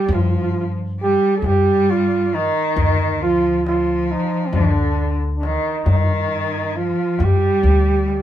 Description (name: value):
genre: Arabic maqam ensemble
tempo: 136 BPM (eighths)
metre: 10/8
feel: straight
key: unclear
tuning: A4 = 440 Hz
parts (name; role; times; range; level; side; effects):
- mellow flugelhorn; melody; 0.0-8.2 s; C4 to Ab4+49c; -20 LUFS; right 4 dB; none
- rich cello; second line; 0.0-8.2 s; D3 to G3; -22 LUFS; left 3 dB; none
- upright bass; bass; 0.1-8.2 s; D2 to G2; -22 LUFS; equal; none
- darbuka; percussion; 0.1-8.2 s; none; -21 LUFS; left 2 dB; none
room: moderate studio reverb, RT60 0.6 s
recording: band playing live in one room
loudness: -16 LUFS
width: side -11 dB against mid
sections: 0.0-8.2 A section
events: drum fill 8.1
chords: none